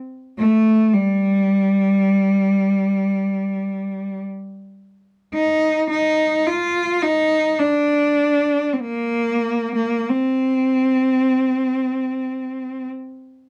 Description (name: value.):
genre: celtic folk.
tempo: free time.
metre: none.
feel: none.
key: C minor.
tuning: A4 = 440 Hz.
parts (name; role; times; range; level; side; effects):
clear cello; solo; 0.4-12.9 s; G3 to F4; -19 LUFS; equal; none.
room: little or no reverb.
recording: dry, close 1970s-style studio recording.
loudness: -19 LUFS.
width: mono.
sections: 0.0-13.5 A section.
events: slowing down 5.3-13.5.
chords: none.